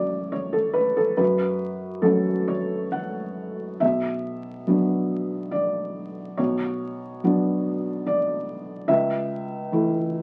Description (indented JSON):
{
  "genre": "neoclassical minimalist piano",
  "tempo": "70 BPM",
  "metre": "3/4",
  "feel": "rubato",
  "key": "B minor",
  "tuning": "A4 = 440 Hz",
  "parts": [
    { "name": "felt-muted upright piano", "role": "solo", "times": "0.0-10.2 s", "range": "B1 to F#5", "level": "-25 LUFS", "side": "equal", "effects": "none" }
  ],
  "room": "moderate studio reverb, RT60 0.6 s",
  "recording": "very old 78 rpm record, vinyl crackle",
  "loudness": "-25 LUFS",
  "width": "mono",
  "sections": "0.0-10.2 A section",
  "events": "none",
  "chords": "0.0 F#m7; 3.8 Bm; 8.9 A/C#"
}